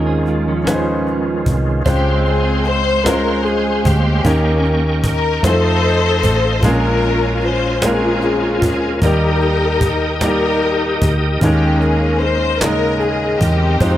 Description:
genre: slow gospel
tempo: 50 BPM (dotted quarters)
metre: 6/8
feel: straight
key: unclear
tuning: A4 = 440 Hz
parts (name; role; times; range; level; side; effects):
- clean electric guitar; second line; 0.0-1.6 s; F3 to Ab4; -24 LUFS; right 5 dB; ensemble chorus
- bright grand piano; accompaniment; 0.0-14.0 s; Bb2 to Eb5; -20 LUFS; equal; none
- bright tonewheel organ; sustained chords; 0.0-14.0 s; Eb3 to Eb6; -23 LUFS; right 2 dB; chorus vibrato, fast rotary speaker
- hollow-body short-scale fingered electric bass; bass; 0.0-14.0 s; A1 to F2; -19 LUFS; equal; none
- cajon; drums; 0.3-14.0 s; none; -20 LUFS; equal; none
- warm studio string section; melody; 1.9-14.0 s; Bb3 to C5; -18 LUFS; left 3 dB; none
- group handclap; percussion; 12.6-13.0 s; none; -24 LUFS; right 3 dB; none
room: light reverb, small room ambience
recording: none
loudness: -13 LUFS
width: side -12 dB against mid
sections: 0.0-1.9 A section; 1.9-14.0 B section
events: none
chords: 0.0 Eb9sus4; 1.9 Dbmaj7; 4.2 Eb7; 5.4 F7; 6.6 Bbm7; 9.0 Eb; 11.4 Eb7sus4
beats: 0.66 | 1.85 3.05 | 4.25 5.44 | 6.64 7.83 | 9.03 10.22 | 11.42 12.61 | 13.80

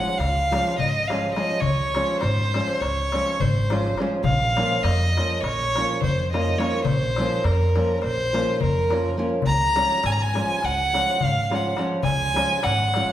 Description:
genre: balkan folk, Balkan wedding band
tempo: 207 BPM (eighths)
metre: 9/8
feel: straight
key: Db major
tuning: A4 = 440 Hz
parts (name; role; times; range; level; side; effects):
- warm violin; melody; 0.0-13.1 s; Bb4 to Bb5; -23 LUFS; equal; none
- nylon-string guitar; accompaniment; 0.0-13.1 s; F3 to F4; -27 LUFS; equal; none
- darbuka; percussion; 0.1-13.1 s; none; -28 LUFS; left 3 dB; none
- upright bass; bass; 0.2-13.0 s; Ab1 to F2; -26 LUFS; equal; none
room: wet recital hall reverb, RT60 1.2 s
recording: recorded in a church or concert hall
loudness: -20 LUFS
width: side -12 dB against mid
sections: 0.0-13.1 A section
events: none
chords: 0.0 Db; 4.2 Bbm; 9.5 Db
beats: 0.17 0.47 0.76 1.05 1.34 | 1.63 1.92 2.21 2.50 2.80 3.09 3.38 3.67 3.96 | 4.25 4.54 4.83 5.12 5.41 5.70 5.99 6.28 6.57 | 6.86 7.14 7.43 7.72 8.01 8.30 8.59 8.88 9.17 | 9.46 9.74 10.03 10.32 10.61 10.90 11.19 11.48 11.77 | 12.05 12.34 12.63 12.92

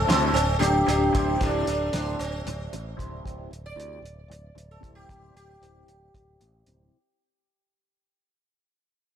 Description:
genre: psychedelic rock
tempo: 228 BPM (eighths)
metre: 7/8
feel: straight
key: unclear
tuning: A4 = 440 Hz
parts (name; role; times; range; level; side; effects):
- sitar; melody; 0.0-6.4 s; A3 to D5; -25 LUFS; equal; ping-pong delay
- tonewheel organ; sustained chords; 0.0-6.9 s; C5 to E5; -41 LUFS; right 5 dB; none
- modern bright picked electric bass; bass; 0.0-6.9 s; D1 to D2; -30 LUFS; equal; none
- overdriven electric guitar; riff; 0.1-6.9 s; C4 to C5; -32 LUFS; equal; phaser, low-pass filter
- cloth-damped thuddy drum kit; drums; 0.1-6.8 s; hi-hat, kick drum, snare drum; -29 LUFS; equal; none
room: wet plate reverb, RT60 1.9 s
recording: dreamy mix soaked in reverb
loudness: -22 LUFS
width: side -9 dB against mid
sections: 0.0-6.9 A section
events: fade-out 0.0-6.9; sitar solo 0.0-6.9; filter sweep 0.0-6.9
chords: 0.0 Cadd9/D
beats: 0.09 0.35 0.61 0.88 1.14 | 1.40 1.67 1.93 2.19 2.45 2.72 2.98 | 3.24 3.51 3.77 4.03 4.29 4.56 4.82 | 5.09 5.35 5.61 5.88 6.14 6.40 6.67

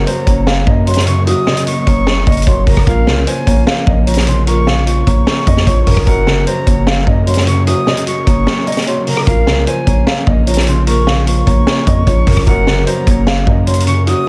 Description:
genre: hip hop, trap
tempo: 150 BPM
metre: 4/4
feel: half-time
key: Bb minor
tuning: A4 = 440 Hz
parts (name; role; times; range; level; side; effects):
- dark grand piano; melody; 0.0-14.3 s; Gb4 to F5; -22 LUFS; equal; none
- silver concert flute; second line; 0.0-14.3 s; F5 to Eb6; -25 LUFS; equal; delay
- felt-muted upright piano; accompaniment; 0.0-14.3 s; Gb2 to Db4; -21 LUFS; equal; none
- glassy FM pad; sustained chords; 0.0-14.3 s; F3 to Bb4; -27 LUFS; equal; none
- long sustained 808-style bass; bass; 0.0-14.1 s; Gb1 to Gb2; -17 LUFS; equal; none
- vintage drum kit; drums; 0.1-14.2 s; hi-hat, kick drum, rim click, snare drum; -17 LUFS; equal; none
room: small room reverb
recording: none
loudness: -13 LUFS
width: mono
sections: 0.0-9.3 A section; 9.3-14.3 A section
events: break 8.5-9.3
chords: 0.0 Gb; 2.9 Bbm; 6.1 Gb; 9.3 Bbm; 12.5 Gb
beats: 0.07 0.47 0.87 | 1.27 1.67 2.07 2.47 | 2.87 3.27 3.67 4.07 | 4.47 4.87 5.27 5.67 | 6.07 6.47 6.87 7.27 | 7.67 8.07 8.47 8.87 | 9.27 9.67 10.07 10.47 | 10.87 11.27 11.67 12.07 | 12.47 12.87 13.27 13.67 | 14.07

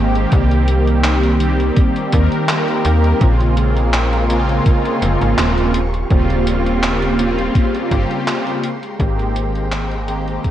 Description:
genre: vaporwave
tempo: 83 BPM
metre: 4/4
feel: swing 54% on 16ths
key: Bb dorian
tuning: A4 = 440 Hz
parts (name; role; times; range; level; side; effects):
- mellow synth brass; accompaniment; 0.0-10.5 s; Db3 to Bb4; -17 LUFS; equal; phaser, wide subtle chorus, tape echo
- slap-like FM bass; bass; 0.0-10.4 s; Eb1 to Eb2; -17 LUFS; equal; tube saturation
- gated 80s digital drum machine; drums; 0.2-10.5 s; handclaps, hi-hat; -23 LUFS; equal; gated reverb, overdrive
- electronic kick drum; drums; 0.3-10.5 s; none; -15 LUFS; equal; none
- soft string machine; sustained chords; 3.2-10.5 s; Ab3 to Db6; -27 LUFS; equal; ensemble chorus, vintage 12-bit sampler grit
room: light reverb, digital ambience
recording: cassette tape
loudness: -14 LUFS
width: side -11 dB against mid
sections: 0.0-10.5 A section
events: fade-out 7.1-10.5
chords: 0.3 Cm7; 3.2 Bbm9; 5.7 Eb13; 8.6 Abmaj9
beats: | 0.32 1.05 1.77 2.49 | 3.21 3.94 4.66 5.38 | 6.11 6.83 7.55 8.28 | 9.00 9.72 10.44

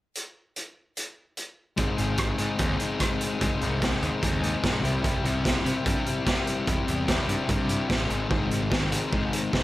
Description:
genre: indie rock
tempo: 147 BPM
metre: 4/4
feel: straight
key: unclear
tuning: A4 = 441 Hz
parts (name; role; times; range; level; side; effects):
- raw garage drum kit; drums; 0.2-9.6 s; hi-hat, kick drum, rim click, snare drum; -27 LUFS; right 1 dB; none
- fuzz guitar; riff; 1.8-9.6 s; Ab2 to Ab4; -27 LUFS; left 3 dB; distortion
- fuzz picked electric bass; bass; 1.8-9.6 s; Ab1 to C3; -30 LUFS; right 1 dB; overdrive
room: little or no reverb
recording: none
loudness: -24 LUFS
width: side -16 dB against mid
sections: 0.2-1.8 A section; 1.8-8.3 B section; 8.3-9.6 C section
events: none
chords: 0.2 N.C.; 1.8 Ab; 4.8 C; 8.1 Ab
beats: | 0.16 0.56 0.97 1.38 | 1.78 2.19 2.60 3.00 | 3.41 3.82 4.23 4.63 | 5.04 5.45 5.86 6.27 | 6.67 7.08 7.49 7.90 | 8.31 8.71 9.12 9.53

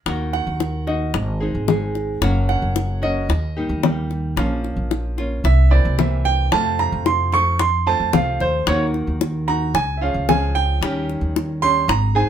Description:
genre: latin, Cuban son and guajira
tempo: 112 BPM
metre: 4/4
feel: straight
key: unclear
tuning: A4 = 440 Hz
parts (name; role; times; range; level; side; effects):
- nylon-string guitar; accompaniment; 0.1-12.3 s; C3 to Ab4; -25 LUFS; left 1 dB; none
- upright bass; bass; 0.1-12.3 s; Gb1 to F2; -21 LUFS; equal; none
- bongos; percussion; 0.1-12.2 s; none; -22 LUFS; left 6 dB; none
- clear grand piano; arpeggios; 0.3-12.3 s; C5 to Db6; -21 LUFS; right 6 dB; none
room: moderate studio reverb, RT60 0.5 s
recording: band playing live in one room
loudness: -17 LUFS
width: side -9 dB against mid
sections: 0.1-12.3 A section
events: grand piano solo 0.1-12.3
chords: 0.1 Ebm; 1.1 Ab; 2.2 Gb; 3.3 Eb; 4.4 Bbm; 5.5 C7; 6.5 F; 8.7 Ebm; 9.8 Db; 10.8 Eb7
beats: | 0.06 0.60 1.14 1.68 | 2.22 2.76 3.30 3.83 | 4.37 4.91 5.45 5.99 | 6.53 7.06 7.60 8.14 | 8.68 9.21 9.75 10.29 | 10.82 11.36 11.90

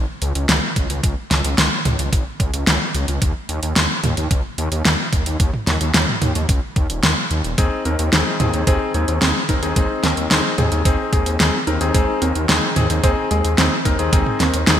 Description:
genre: synthwave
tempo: 110 BPM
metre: 4/4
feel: straight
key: Ab major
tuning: A4 = 442 Hz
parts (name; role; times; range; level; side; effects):
- wide detuned saw bass; bass; 0.0-14.8 s; Eb1 to Eb2; -21 LUFS; equal; chorus, tube saturation, sidechain pumping
- pop drum kit; drums; 0.2-14.8 s; hi-hat, snare drum, toms; -19 LUFS; equal; gated reverb
- electronic kick drum; drums; 0.8-14.2 s; none; -18 LUFS; equal; none
- warbly dusty pluck; arpeggios; 7.6-14.8 s; Ab3 to C5; -26 LUFS; right 3 dB; chorus, ping-pong delay
- warm electric grand piano; stabs; 7.6-14.8 s; C4 to Bb4; -22 LUFS; left 3 dB; ping-pong delay
room: moderate lush hall reverb, RT60 2.3 s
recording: bright 1980s-style digital production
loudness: -16 LUFS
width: side -10 dB against mid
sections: 0.0-14.8 A section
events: none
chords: 0.0 Db5; 3.2 N.C.; 7.6 Ab/Eb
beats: 0.49 | 1.04 1.58 2.13 2.67 | 3.22 3.76 4.31 4.85 | 5.40 5.95 6.49 7.04 | 7.58 8.13 8.67 9.22 | 9.76 10.31 10.85 11.40 | 11.95 12.49 13.04 13.58 | 14.13 14.67

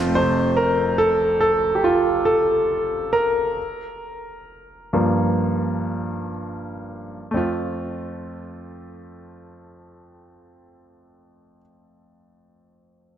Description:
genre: pop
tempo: 59-72 BPM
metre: 4/4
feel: straight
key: F major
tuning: A4 = 441 Hz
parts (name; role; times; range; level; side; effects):
- bright concert grand piano; accompaniment; 0.0-13.2 s; F1 to C5; -20 LUFS; equal; none
- fingerpicked plugged-in steel-string acoustic guitar; arpeggios; 0.0-0.7 s; F2 to F4; -32 LUFS; right 1 dB; none
room: wet plate reverb, RT60 3.0 s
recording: dreamy mix soaked in reverb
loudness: -19 LUFS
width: side -10 dB against mid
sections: 0.2-7.3 A section; 7.3-11.4 B section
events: slowing down 0.2-7.3; grand piano solo 0.2-7.3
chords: 0.2 F; 3.6 Gm7; 7.3 F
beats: | 0.15 0.99 1.83 2.69 | 3.57 4.46 5.39 6.34 | 7.33 8.34 9.36 10.37

